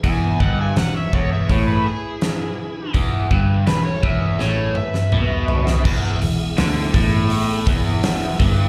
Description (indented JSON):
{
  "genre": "blues rock power trio and southern rock",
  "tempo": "83 BPM",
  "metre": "4/4",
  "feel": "straight",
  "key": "E major",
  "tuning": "A4 = 439 Hz",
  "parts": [
    { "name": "bluesy overdriven lead guitar", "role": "second line", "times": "0.0-5.8 s", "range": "E4 to E5", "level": "-37 LUFS", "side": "equal", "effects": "distortion, slapback echo" },
    { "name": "tonewheel organ", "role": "sustained chords", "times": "0.0-8.7 s", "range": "B3 to E5", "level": "-34 LUFS", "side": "equal", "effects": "slow rotary speaker, overdrive, chorus vibrato" },
    { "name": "overdriven electric guitar", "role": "riff", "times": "0.0-8.7 s", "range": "E2 to D3", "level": "-26 LUFS", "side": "equal", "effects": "phaser, slapback echo" },
    { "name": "vintage muted picked electric bass", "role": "bass", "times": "0.0-8.7 s", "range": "E1 to D2", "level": "-23 LUFS", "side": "equal", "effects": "none" },
    { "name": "huge arena drum kit", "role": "drums", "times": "0.0-8.6 s", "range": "crash cymbal, hi-hat, kick drum, snare drum, toms", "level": "-23 LUFS", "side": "equal", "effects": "none" },
    { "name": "overdriven slide guitar", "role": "melody", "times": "0.1-5.8 s", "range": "G#4 to G#5", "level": "-29 LUFS", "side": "equal", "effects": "slapback echo" }
  ],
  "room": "light reverb, small room ambience",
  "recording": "live gig heard through the venue's PA, club reverb",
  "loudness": "-19 LUFS",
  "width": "mono",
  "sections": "0.0-5.9 A section; 5.9-8.7 B section",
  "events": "drum fill 4.4-5.9",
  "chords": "0.0 E",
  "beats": "| 0.04 0.77 1.50 2.22 | 2.95 3.68 4.40 5.13 | 5.86 6.58 7.31 8.03"
}